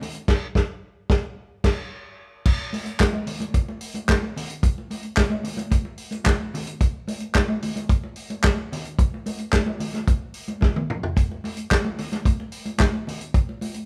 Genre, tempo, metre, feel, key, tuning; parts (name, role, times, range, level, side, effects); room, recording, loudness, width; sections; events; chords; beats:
disco; 110 BPM; 4/4; straight
warm soul drum kit; drums; 0.0-13.9 s; crash cymbal, handclaps, hi-hat, kick drum, snare drum, toms; -24 LUFS; equal
congas; percussion; 0.0-13.7 s; -32 LUFS; equal
moderate large studio reverb, RT60 1.0 s; band playing live in one room; -24 LUFS; mono
0.0-2.5 A section; 2.5-13.9 B section
band accent 0.3-2.5; drum fill 10.6-11.2
| 0.28 0.82 1.37 1.91 | 2.46 3.00 3.54 4.09 | 4.63 5.17 5.72 6.26 | 6.81 7.35 7.90 8.44 | 8.99 9.53 10.08 10.62 | 11.17 11.71 12.26 12.80 | 13.35